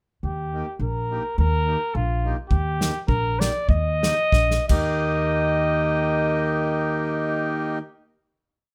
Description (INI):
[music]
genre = alpine folk, alpine dance band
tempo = 81-107 BPM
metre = 2/4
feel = swing 54% on 8ths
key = Eb major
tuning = A4 = 439 Hz
[part]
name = upright bass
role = bass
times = 0.2-7.8 s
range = Bb1 to Eb2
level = -27 LUFS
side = equal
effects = none
[part]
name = mellow trumpet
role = melody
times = 0.3-7.8 s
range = F4 to Eb5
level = -27 LUFS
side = equal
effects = none
[part]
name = accordion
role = accompaniment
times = 0.5-7.8 s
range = Bb3 to G4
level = -28 LUFS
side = equal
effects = none
[part]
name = natural country drum kit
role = drums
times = 2.5-4.8 s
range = crash cymbal, kick drum, snare drum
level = -26 LUFS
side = equal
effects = none
[sound]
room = light reverb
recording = none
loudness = -23 LUFS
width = mono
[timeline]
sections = 0.2-5.0 A section; 5.0-8.0 final hit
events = slowing down 2.5-5.0; drum fill 4.3-5.0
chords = 0.2 Eb